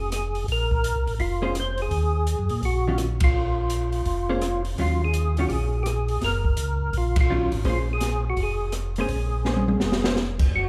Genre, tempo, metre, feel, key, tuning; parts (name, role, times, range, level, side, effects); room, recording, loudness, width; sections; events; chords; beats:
soul jazz organ trio; 167 BPM; 4/4; swing 64% on 8ths; Bb minor; A4 = 440 Hz
percussive tonewheel organ; melody; 0.0-10.7 s; E4 to C5; -30 LUFS; equal; slow rotary speaker, chorus vibrato
vintage hollow-body jazz guitar; accompaniment; 0.0-10.2 s; Eb3 to C5; -32 LUFS; equal
mellow tonewheel organ; bass; 0.0-10.7 s; F1 to Bb2; -28 LUFS; equal; slow rotary speaker
open jazz drum kit; drums; 0.1-10.6 s; crash cymbal, hi-hat, kick drum, ride cymbal, rim click, snare drum, toms; -28 LUFS; equal
moderate recital hall reverb, RT60 1.8 s; recorded in a church or concert hall; -24 LUFS; mono
0.0-10.7 A section
band accent 3.2, 7.1; drum fill 9.5-10.2
0.0 Bb7sus2; 1.9 Ebm; 3.3 Bb5; 4.8 Ebm9; 7.7 Bbm9
0.12 | 0.48 0.84 1.20 1.56 | 1.92 2.27 2.63 2.99 | 3.35 3.71 4.07 4.43 | 4.79 5.14 5.50 5.86 | 6.22 6.58 6.94 7.30 | 7.66 8.02 8.38 8.73 | 9.09 9.45 9.81 10.17 | 10.53